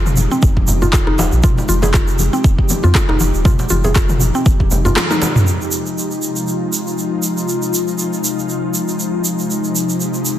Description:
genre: afro house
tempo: 119 BPM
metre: 4/4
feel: swing 56% on 16ths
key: F minor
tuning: A4 = 441 Hz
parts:
  - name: ethereal airy pad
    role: sustained chords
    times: 0.1-10.4 s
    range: C3 to G4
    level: -20 LUFS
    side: left 2 dB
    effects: ensemble chorus, built-in reverb, vintage 12-bit sampler grit, sidechain pumping
  - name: mallet-like synth pluck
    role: arpeggios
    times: 0.0-5.2 s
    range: C4 to Ab4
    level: -22 LUFS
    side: equal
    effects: chorus, sidechain pumping, tape echo
  - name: warm sub bass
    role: bass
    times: 0.0-5.0 s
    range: Eb1 to F2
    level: -17 LUFS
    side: equal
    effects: sidechain pumping
  - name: deep house drum kit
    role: drums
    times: 0.1-5.4 s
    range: handclaps, rim click, toms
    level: -19 LUFS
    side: equal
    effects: overdrive, low-pass filter on toms, low-pass filter on snare, low-pass filter on room
  - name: egg shaker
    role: percussion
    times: 0.1-10.4 s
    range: none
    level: -23 LUFS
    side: right 4 dB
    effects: none
  - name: congas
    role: percussion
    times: 0.2-5.4 s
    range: none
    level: -23 LUFS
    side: left 2 dB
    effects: none
  - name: djembe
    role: percussion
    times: 0.2-5.3 s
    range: none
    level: -26 LUFS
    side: right 1 dB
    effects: none
  - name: electronic kick drum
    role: drums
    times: 0.4-4.7 s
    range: none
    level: -14 LUFS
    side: equal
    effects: overdrive
room: light reverb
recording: dense, heavily limited modern master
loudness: -13 LUFS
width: side -12 dB against mid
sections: 0.0-5.5 A section; 5.5-10.4 B section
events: drum fill 5.0-5.5; band accent 5.0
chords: 0.0 Fm7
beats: 0.43 0.93 | 1.44 1.94 2.44 2.95 | 3.45 3.96 4.46 4.96 | 5.47 5.97 6.48 6.98 | 7.49 7.99 8.49 9.00 | 9.50 10.01

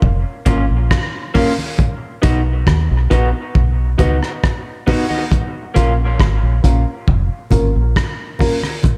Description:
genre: dub reggae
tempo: 68 BPM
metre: 4/4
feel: straight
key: Bb phrygian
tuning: A4 = 440 Hz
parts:
  - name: deep dub fingered electric bass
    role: bass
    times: 0.0-7.9 s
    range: F1 to D#2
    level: -18 LUFS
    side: equal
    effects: none
  - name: cloth-damped thuddy drum kit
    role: drums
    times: 0.0-9.0 s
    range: hi-hat, kick drum, rim click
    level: -20 LUFS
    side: equal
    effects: none
  - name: congas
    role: percussion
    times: 0.0-9.0 s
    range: none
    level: -29 LUFS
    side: equal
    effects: none
  - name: electric guitar through a small old amp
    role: accompaniment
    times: 0.5-5.9 s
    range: Bb3 to F#4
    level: -26 LUFS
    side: equal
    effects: dub echo
  - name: dark upright piano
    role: stabs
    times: 0.5-8.6 s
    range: Bb3 to B4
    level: -26 LUFS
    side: equal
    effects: dub echo
room: light reverb, small room ambience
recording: echo-heavy mix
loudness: -16 LUFS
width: mono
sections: 0.0-9.0 A section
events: none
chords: 0.0 Bbm; 1.8 B; 5.3 Bbm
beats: 0.03 0.91 | 1.79 2.67 3.55 4.43 | 5.31 6.19 7.08 7.96 | 8.84

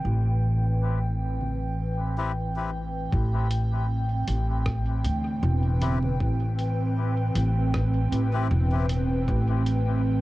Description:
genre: ambient dub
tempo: 78 BPM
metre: 4/4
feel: swing 54% on 16ths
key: A minor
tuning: A4 = 440 Hz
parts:
  - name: airy breathy pad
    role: sustained chords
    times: 0.0-10.2 s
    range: A2 to G5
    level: -30 LUFS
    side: right 1 dB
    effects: chorus, cassette tape
  - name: upright bass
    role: bass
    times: 0.0-10.2 s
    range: E1 to D2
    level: -24 LUFS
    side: equal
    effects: tube saturation
  - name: lo-fi sampler-style drum kit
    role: drums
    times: 1.4-9.8 s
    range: congas, hi-hat, rim click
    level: -37 LUFS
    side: right 1 dB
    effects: studio ambience, cassette tape, dub echo
  - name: melodica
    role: stabs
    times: 2.2-8.9 s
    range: C4 to B4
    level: -36 LUFS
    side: left 7 dB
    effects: cassette tape, dub echo
  - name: electronic kick drum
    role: drums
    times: 3.1-9.4 s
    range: none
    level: -30 LUFS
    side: equal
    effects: studio ambience, cassette tape
room: little or no reverb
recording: home recording on cassette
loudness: -23 LUFS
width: side -17 dB against mid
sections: 0.0-3.1 A section; 3.1-10.2 B section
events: filter sweep on melodica 0.0-3.1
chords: 0.0 Am7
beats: | 0.05 0.82 1.59 2.36 | 3.13 3.90 4.67 5.43 | 6.20 6.97 7.74 8.51 | 9.28 10.05

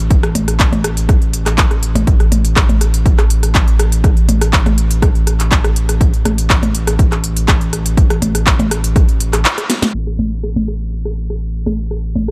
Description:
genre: melodic techno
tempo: 122 BPM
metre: 4/4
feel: straight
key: unclear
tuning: A4 = 440 Hz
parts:
  - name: round analog bass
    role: bass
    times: 0.0-12.3 s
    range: A1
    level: -19 LUFS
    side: equal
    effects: tube saturation, sidechain pumping
  - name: electronic kick drum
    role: drums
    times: 0.1-9.1 s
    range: none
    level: -16 LUFS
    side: equal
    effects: none
  - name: techno drum kit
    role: drums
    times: 0.1-12.3 s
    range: handclaps, hi-hat, percussion blips, rim click, snare drum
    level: -19 LUFS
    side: equal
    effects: sidechain pumping on hats, low-pass filter on hats, sidechain pumping on cymbals, low-pass filter on cymbals, low-pass filter on snare, sidechain pumping on perc, low-pass filter on perc, low-pass filter on room
room: little or no reverb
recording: low-pass filter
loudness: -14 LUFS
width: mono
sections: 0.0-9.9 A section; 9.9-12.3 B section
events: band accent 9.4; drum fill 9.7; filter sweep 9.9-12.3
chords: none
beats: | 0.11 0.60 1.09 1.58 | 2.07 2.56 3.06 3.55 | 4.04 4.53 5.02 5.52 | 6.01 6.50 6.99 7.48 | 7.97 8.47 8.96 9.45 | 9.94 10.43 10.93 11.42 | 11.91

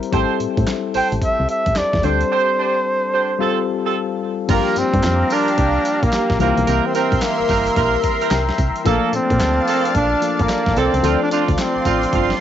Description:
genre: R&B, new jack swing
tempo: 110 BPM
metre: 4/4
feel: swing 64% on 16ths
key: G dorian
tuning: A4 = 438 Hz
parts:
  - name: soft electric-piano-like synth keys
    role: accompaniment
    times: 0.0-12.4 s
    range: E3 to Bb5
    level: -23 LUFS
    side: left 10 dB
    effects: chorus
  - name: dusty soul sampler-style drum kit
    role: drums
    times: 0.0-12.4 s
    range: crash cymbal, handclaps, hi-hat, kick drum, snare drum, tambourine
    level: -23 LUFS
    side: equal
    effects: overdrive, cassette tape
  - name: warm horn section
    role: stabs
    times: 0.1-12.3 s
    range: Bb3 to C5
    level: -23 LUFS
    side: right 10 dB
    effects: none
  - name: solid FM bass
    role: bass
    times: 0.1-12.3 s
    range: G1 to Bb2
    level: -21 LUFS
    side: equal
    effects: none
  - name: trumpet with bucket mute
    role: melody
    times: 1.0-12.4 s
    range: Bb3 to G5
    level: -19 LUFS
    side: right 1 dB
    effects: cassette tape
  - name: lush unison pad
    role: sustained chords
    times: 5.0-12.4 s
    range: F4 to C6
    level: -23 LUFS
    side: equal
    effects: chorus, phaser
room: light reverb, digital ambience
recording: home recording on cassette, nothing above 7.7 kHz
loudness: -15 LUFS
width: side -10 dB against mid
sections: 0.0-4.5 A section; 4.5-12.4 B section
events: synth keys fill 7.8-8.9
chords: 0.1 Am7; 2.0 D7sus4; 3.4 Fadd9; 4.5 Gm7; 6.4 C7; 8.9 Bbmaj7; 11.0 Dm7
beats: | 0.13 0.67 1.22 1.76 | 2.31 2.85 3.40 3.95 | 4.49 5.04 5.58 6.13 | 6.67 7.22 7.76 8.31 | 8.86 9.40 9.95 10.49 | 11.04 11.58 12.13

